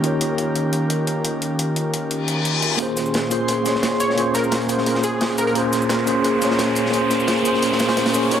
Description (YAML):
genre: liquid drum and bass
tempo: 174 BPM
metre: 4/4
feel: straight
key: Bb dorian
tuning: A4 = 440 Hz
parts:
  - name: mellow tine electric piano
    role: accompaniment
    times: 0.0-8.4 s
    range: Bb3 to Db5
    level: -21 LUFS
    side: equal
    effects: medium stereo tremolo, tape echo
  - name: airy breathy pad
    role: sustained chords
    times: 0.0-8.4 s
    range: Bb2 to C6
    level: -24 LUFS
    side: equal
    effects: chorus
  - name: electronic hi-hat and shaker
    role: drums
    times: 0.0-8.4 s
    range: none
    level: -28 LUFS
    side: left 3 dB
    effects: none
  - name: reverse cymbal and riser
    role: sound effects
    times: 2.2-8.4 s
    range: none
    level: -26 LUFS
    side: left 2 dB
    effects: none
  - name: crunchy breakbeat drum kit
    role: drums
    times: 2.8-8.4 s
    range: hi-hat, snare drum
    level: -26 LUFS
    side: equal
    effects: high-pass filter on hats, high-pass filter on snare, high-pass filter on room, tape echo
  - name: plucky unison lead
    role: melody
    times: 4.0-5.5 s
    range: Ab4 to Db5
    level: -25 LUFS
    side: equal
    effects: cassette tape, analog delay
room: wet spring reverb, RT60 1.9 s, studio reverb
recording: echo-heavy mix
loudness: -18 LUFS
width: side -9 dB against mid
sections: 0.0-2.8 A section; 2.8-8.4 B section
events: reverse cymbal 2.2-2.8; build-up 2.8-8.4; riser 2.8-8.4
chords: 0.0 Eb9; 2.8 Bbm9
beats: | 0.04 0.38 0.73 1.07 | 1.42 1.76 2.11 2.45 | 2.80 3.14 3.49 3.83 | 4.18 4.52 4.87 5.21 | 5.55 5.90 6.25 6.59 | 6.93 7.28 7.62 7.97 | 8.31